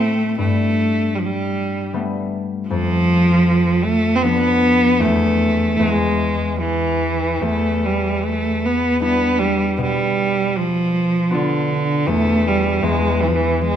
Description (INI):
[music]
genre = celtic folk, Celtic slow air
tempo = 78 BPM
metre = 3/4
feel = rubato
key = unclear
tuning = A4 = 441 Hz
[part]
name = rich cello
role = melody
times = 0.0-13.8 s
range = D3 to C4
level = -17 LUFS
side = right 1 dB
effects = none
[part]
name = concert harp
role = accompaniment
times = 0.0-13.8 s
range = E2 to F4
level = -21 LUFS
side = left 3 dB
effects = none
[sound]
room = moderate scoring stage reverb, RT60 1.6 s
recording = minimal, uncompressed stereo recording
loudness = -16 LUFS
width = side -9 dB against mid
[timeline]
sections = 0.0-13.8 A section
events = none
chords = 0.4 Gadd9; 2.7 Bdim/F; 5.0 N.C.; 7.4 Em7; 9.8 Bdim; 12.1 N.C.